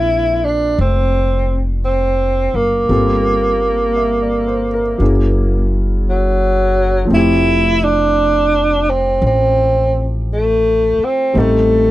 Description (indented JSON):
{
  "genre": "jazz ballad",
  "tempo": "57 BPM",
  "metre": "4/4",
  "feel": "swing 66% on 8ths",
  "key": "F major",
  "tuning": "A4 = 445 Hz",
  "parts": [
    { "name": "mellow tenor saxophone", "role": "melody", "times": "0.0-11.9 s", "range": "Gb3 to E4", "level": "-15 LUFS", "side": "right 1 dB", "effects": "none" },
    { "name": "warm concert grand piano", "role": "accompaniment", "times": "0.0-11.9 s", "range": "F3 to E5", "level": "-20 LUFS", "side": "equal", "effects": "none" },
    { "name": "upright bass", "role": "bass", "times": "0.0-11.9 s", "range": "F1 to Bb1", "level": "-18 LUFS", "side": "equal", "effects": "none" }
  ],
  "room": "little or no reverb",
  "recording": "dry, close 1970s-style studio recording",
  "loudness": "-12 LUFS",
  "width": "side -16 dB against mid",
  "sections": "0.0-11.9 A section",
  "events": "none",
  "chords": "0.0 Bbmaj9; 2.9 Gm11; 5.0 Gb9; 7.1 Fmaj9; 11.4 Am7b5",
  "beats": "0.78 1.84 | 2.90 3.95 5.00 6.06 | 7.11 8.16 9.22 10.29 | 11.35"
}